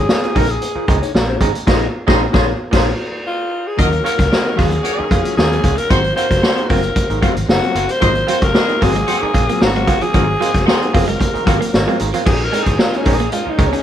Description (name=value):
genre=funk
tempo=113 BPM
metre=4/4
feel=straight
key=Bb minor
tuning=A4 = 439 Hz
part: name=breathy alto saxophone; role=melody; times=0.0-13.8 s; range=Db4 to C5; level=-20 LUFS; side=left 2 dB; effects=none
part: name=mellow electric guitar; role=accompaniment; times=0.0-13.8 s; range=Gb3 to Eb5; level=-24 LUFS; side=left 6 dB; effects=none
part: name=vintage muted fingered electric bass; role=bass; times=0.0-13.7 s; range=Gb1 to F2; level=-22 LUFS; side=equal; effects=none
part: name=bright clav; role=stabs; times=0.1-13.7 s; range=Ab2 to F4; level=-23 LUFS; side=right 4 dB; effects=none
part: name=vintage drum kit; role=drums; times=0.1-13.8 s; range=crash cymbal, hi-hat, kick drum, snare drum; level=-16 LUFS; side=equal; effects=none
part: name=bright horn section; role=second line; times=1.7-11.6 s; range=Bb3 to Eb5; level=-23 LUFS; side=left 1 dB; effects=none
part: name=bright tonewheel organ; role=sustained chords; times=3.8-13.8 s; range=Gb3 to F5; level=-29 LUFS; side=equal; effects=none
part: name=clean electric guitar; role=riff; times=8.0-13.8 s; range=F3 to Db4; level=-24 LUFS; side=right 7 dB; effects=none
room=moderate studio reverb, RT60 0.6 s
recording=band playing live in one room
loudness=-13 LUFS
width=side -10 dB against mid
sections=0.0-3.8 A section; 3.8-12.3 B section; 12.3-13.8 C section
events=band accent 1.7-3.8; alto saxophone solo 12.3-13.8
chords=0.0 Bbm11; 3.8 Ebm9; 5.9 Ab13; 12.3 Bbm11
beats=0.09 0.62 1.15 | 1.67 2.20 2.73 3.26 | 3.79 4.32 4.85 5.38 | 5.91 6.43 6.96 7.49 | 8.02 8.55 9.08 9.61 | 10.14 10.67 11.20 11.73 | 12.27 12.80 13.33